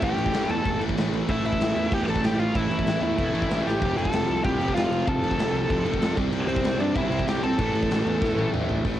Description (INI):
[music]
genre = punk rock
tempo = 190 BPM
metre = 4/4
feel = straight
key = A minor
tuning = A4 = 440 Hz
[part]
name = high-gain lead guitar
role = melody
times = 0.0-8.5 s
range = C4 to A5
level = -28 LUFS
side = left 1 dB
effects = distortion, cassette tape
[part]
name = distorted electric guitar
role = riff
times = 0.0-9.0 s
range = F2 to C4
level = -31 LUFS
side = left 9 dB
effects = overdrive, cassette tape
[part]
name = sludgy distorted guitar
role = riff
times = 0.0-9.0 s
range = F2 to C4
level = -28 LUFS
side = right 6 dB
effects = overdrive, cassette tape
[part]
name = fuzz picked electric bass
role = bass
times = 0.0-9.0 s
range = E1 to G2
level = -31 LUFS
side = left 1 dB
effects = overdrive
[part]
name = big rock drum kit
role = drums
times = 0.0-8.9 s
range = crash cymbal, hi-hat, kick drum, snare drum, toms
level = -28 LUFS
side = equal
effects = cassette tape
[sound]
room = small room ambience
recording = home recording on cassette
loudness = -22 LUFS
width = side -12 dB against mid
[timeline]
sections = 0.0-8.8 A section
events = drum fill 3.6, 8.2-8.8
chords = 0.0 A5; 3.8 F; 6.2 C; 7.6 A5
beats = | 0.02 0.33 0.65 0.97 | 1.28 1.60 1.91 2.23 | 2.54 2.86 3.17 3.49 | 3.81 4.12 4.43 4.75 | 5.07 5.38 5.69 6.01 | 6.32 6.64 6.95 7.27 | 7.58 7.90 8.21 8.53 | 8.84